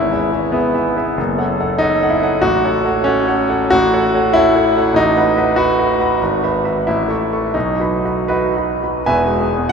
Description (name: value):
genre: classical, romantic character piece for solo piano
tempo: 77-100 BPM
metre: 2/4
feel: rubato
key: E major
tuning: A4 = 441 Hz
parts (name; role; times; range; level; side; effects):
- clear concert grand piano; solo; 0.0-9.7 s; E1 to C#6; -13 LUFS; equal; none
room: wet cathedral reverb, RT60 6.0 s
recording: none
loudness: -13 LUFS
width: side -6 dB against mid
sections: 0.0-9.1 A section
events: none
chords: 0.0 E/G#; 1.2 F#m; 2.4 F#m/A; 5.0 B7/A; 6.2 E/G#; 6.9 A; 7.5 B; 9.1 E